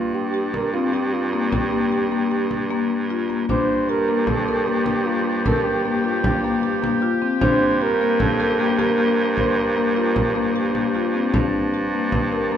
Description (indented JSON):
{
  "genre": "contemporary instrumental, chamber music in an uneven meter",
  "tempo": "153 BPM",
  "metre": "5/4",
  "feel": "straight",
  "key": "G minor",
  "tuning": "A4 = 440 Hz",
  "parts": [
    { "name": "breathy flugelhorn", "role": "melody", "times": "0.0-10.8 s", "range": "F4 to C5", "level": "-24 LUFS", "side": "right 4 dB", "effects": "none" },
    { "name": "marimba with medium mallets", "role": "arpeggios", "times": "0.0-12.6 s", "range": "Bb3 to Bb4", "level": "-22 LUFS", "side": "left 4 dB", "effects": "none" },
    { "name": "clear baritone saxophone", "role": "bass", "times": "0.0-12.6 s", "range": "G2", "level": "-25 LUFS", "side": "right 2 dB", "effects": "none" },
    { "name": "frame drum", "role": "percussion", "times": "0.1-12.6 s", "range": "none", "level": "-26 LUFS", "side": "right 1 dB", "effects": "none" },
    { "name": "warm woodwind section", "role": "sustained chords", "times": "3.5-12.6 s", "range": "F3 to A5", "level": "-28 LUFS", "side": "equal", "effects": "none" }
  ],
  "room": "wet recital hall reverb, RT60 1.6 s",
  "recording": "dark, warm production",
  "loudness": "-18 LUFS",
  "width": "side -9 dB against mid",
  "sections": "0.0-3.5 A section; 3.5-12.6 B section",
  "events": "none",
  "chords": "0.0 Gm7",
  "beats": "0.34 0.74 1.13 | 1.52 1.92 2.31 2.70 3.10 | 3.49 3.88 4.28 4.67 5.06 | 5.45 5.84 6.24 6.63 7.02 | 7.42 7.81 8.20 8.59 8.99 | 9.38 9.77 10.16 10.56 10.95 | 11.34 11.74 12.13 12.52"
}